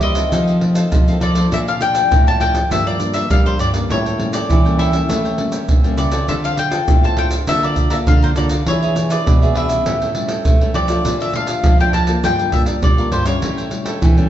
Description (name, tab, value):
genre	samba and choro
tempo	101 BPM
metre	4/4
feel	straight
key	unclear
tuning	A4 = 440 Hz
part	mandolin	melody	0.0-14.3 s	C5 to A5	-20 LUFS	left 2 dB	none
part	cavaquinho	accompaniment	0.0-14.3 s	D4 to Bb5	-27 LUFS	right 4 dB	none
part	nylon-string guitar	accompaniment	0.0-14.3 s	F2 to A4	-25 LUFS	left 3 dB	none
part	nylon-string guitar	bass	0.0-14.3 s	G2 to A3	-20 LUFS	equal	none
part	pandeiro, tube shaker and surdo	percussion	0.0-14.3 s	none	-17 LUFS	right 1 dB	none
room	wet large studio reverb, RT60 1.4 s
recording	band playing live in one room, nothing above 7.8 kHz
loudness	-14 LUFS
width	side -11 dB against mid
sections	0.0-14.3 A section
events	none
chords	0.3 F7; 1.5 Bbmaj7; 2.7 Gm7; 3.9 A7b9; 6.3 Dm7; 7.5 Bbmaj7/D; 8.7 E7; 9.9 A7; 11.1 Bbmaj7; 12.2 Gm9; 13.4 A7